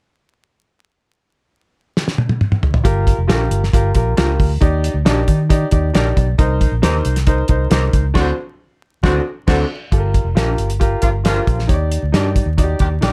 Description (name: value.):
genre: uptempo 1960s-style soul.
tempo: 136 BPM.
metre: 4/4.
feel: straight.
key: G minor.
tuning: A4 = 435 Hz.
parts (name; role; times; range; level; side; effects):
cloth-damped thuddy drum kit; drums; 2.0-13.1 s; crash cymbal, hi-hat, kick drum, snare drum, toms; -19 LUFS; equal; none.
clear concert grand piano; accompaniment; 2.8-13.1 s; D4 to D5; -24 LUFS; equal; none.
vintage muted fingered electric bass; bass; 2.8-13.1 s; F1 to Eb3; -20 LUFS; equal; none.
electric guitar through a small old amp; stabs; 3.3-13.1 s; C4 to Bb4; -26 LUFS; equal; subtle chorus, slapback echo.
warm horn section; second line; 8.1-13.1 s; D3 to G4; -26 LUFS; equal; none.
room: little or no reverb.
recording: vinyl crackle.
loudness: -16 LUFS.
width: mono.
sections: 1.1-2.8 A section; 2.8-9.9 B section; 9.9-13.1 C section.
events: drum fill 2.0-2.8; band accent 8.2-9.9.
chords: 1.1 N.C.; 2.8 Gm7; 4.6 Ebmaj7; 6.4 Cm7; 8.2 D7; 9.9 Gm7; 11.7 Ebmaj7.